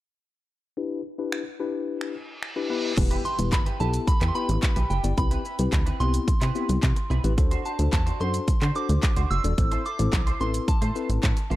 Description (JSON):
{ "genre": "dance-pop", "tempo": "109 BPM", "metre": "4/4", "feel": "straight", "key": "E minor", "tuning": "A4 = 440 Hz", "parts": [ { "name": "tine electric piano", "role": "accompaniment", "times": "0.8-11.3 s", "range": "B3 to D5", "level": "-31 LUFS", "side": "left 6 dB", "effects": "sidechain pumping, low-pass filter" }, { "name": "pop drum kit", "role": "drums", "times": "1.3-11.6 s", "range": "crash cymbal, finger snaps, handclaps, hi-hat, kick drum, shaker", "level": "-25 LUFS", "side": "equal", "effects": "none" }, { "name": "reverse cymbal and impact", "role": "sound effects", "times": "2.1-5.2 s", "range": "none", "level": "-37 LUFS", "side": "right 1 dB", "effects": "none" }, { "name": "clean electric guitar", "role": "riff", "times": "3.0-11.6 s", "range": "C4 to C5", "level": "-36 LUFS", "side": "right 4 dB", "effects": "analog chorus" }, { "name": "plucky analog bass", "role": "bass", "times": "3.0-11.6 s", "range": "E1 to D3", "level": "-25 LUFS", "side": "equal", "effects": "sidechain pumping" }, { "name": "soft synth bell", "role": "melody", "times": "3.3-11.5 s", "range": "G5 to E6", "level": "-32 LUFS", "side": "right 2 dB", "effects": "chorus, dub echo" }, { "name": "group handclap", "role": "percussion", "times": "3.5-11.4 s", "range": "none", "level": "-41 LUFS", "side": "left 7 dB", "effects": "none" } ], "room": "digital ambience", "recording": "dark, warm production", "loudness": "-22 LUFS", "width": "side -16 dB against mid", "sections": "0.8-3.0 A section; 3.0-11.6 B section", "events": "kick muted 0.8-3.0; filter sweep on tine electric piano 0.8-3.0; reverse cymbal 2.1-3.0; impact 3.0-5.2", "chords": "0.8 Em7; 2.7 Em; 5.2 Cmaj7; 7.4 D7; 9.6 Am" }